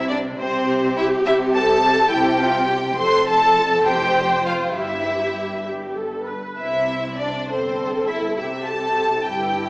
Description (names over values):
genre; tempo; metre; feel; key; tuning
quick classical-period movement for string orchestra; 68 BPM (dotted quarters); 6/8; rubato; C major; A4 = 439 Hz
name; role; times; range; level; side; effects
rich symphonic violin section; melody; 0.0-9.7 s; C5 to C6; -21 LUFS; left 1 dB; none
rich symphonic violin section; second line; 0.0-9.7 s; C4 to C5; -23 LUFS; equal; none
warm symphonic cello section; bass; 0.0-9.7 s; F2 to C3; -28 LUFS; equal; none
warm symphonic double bass section; bass; 0.0-9.7 s; F1 to C2; -36 LUFS; equal; none
warm symphonic viola section; accompaniment; 0.4-9.7 s; E4 to C5; -23 LUFS; equal; none
room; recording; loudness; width
wet scoring stage reverb, RT60 1.7 s; small speaker sound; -17 LUFS; side -25 dB against mid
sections
0.0-9.7 A section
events
none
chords
0.0 C5; 3.0 F; 4.8 Em/G; 5.7 G; 6.6 C